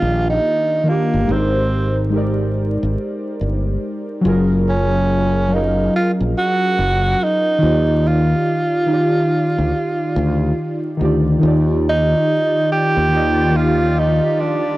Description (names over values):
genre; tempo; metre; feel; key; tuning
lo-fi hip hop; 71 BPM; 4/4; swing 63% on 16ths; Eb major; A4 = 440 Hz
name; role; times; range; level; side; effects
breathy tenor saxophone; melody; 0.0-14.8 s; Bb3 to G4; -18 LUFS; right 2 dB; low-pass filter
warbly lo-fi synth keys; accompaniment; 0.0-14.8 s; Eb3 to F5; -19 LUFS; equal; chorus, low-pass filter
fretless electric bass; bass; 0.0-14.2 s; Gb1 to Eb2; -19 LUFS; equal; transformer saturation, lush chorus
granular cloud pad; sustained chords; 12.7-14.8 s; Eb3 to D5; -26 LUFS; left 1 dB; built-in reverb, low-pass filter
room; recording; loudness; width
light reverb; dry, gritty hardware recording, transformer saturation, vinyl crackle; -15 LUFS; side -17 dB against mid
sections
0.0-11.4 A section; 11.4-14.8 B section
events
none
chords
0.0 Ebmaj9; 1.3 Abmaj9; 4.2 Gbmaj9; 7.6 Ebmaj9